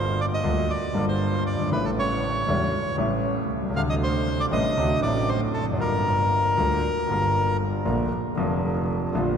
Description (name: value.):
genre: tango.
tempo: 117 BPM.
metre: 4/4.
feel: rubato.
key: G minor.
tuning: A4 = 445 Hz.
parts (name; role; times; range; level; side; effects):
bandoneon; melody; 0.0-7.6 s; A4 to F5; -26 LUFS; equal; none.
warm concert grand piano; accompaniment; 0.0-9.4 s; E1 to F4; -25 LUFS; left 1 dB; none.
rich double bass; bass; 0.0-9.4 s; E1 to D2; -28 LUFS; right 2 dB; none.
room: wet cathedral reverb, RT60 5.9 s.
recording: recorded in a church or concert hall.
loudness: -22 LUFS.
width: side -7 dB against mid.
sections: 0.0-7.9 A section; 7.9-9.4 B section.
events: none.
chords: 0.0 Gm7; 1.7 A7; 3.8 D7sus4; 4.8 D7; 5.8 Gm7; 7.9 Bbmaj7.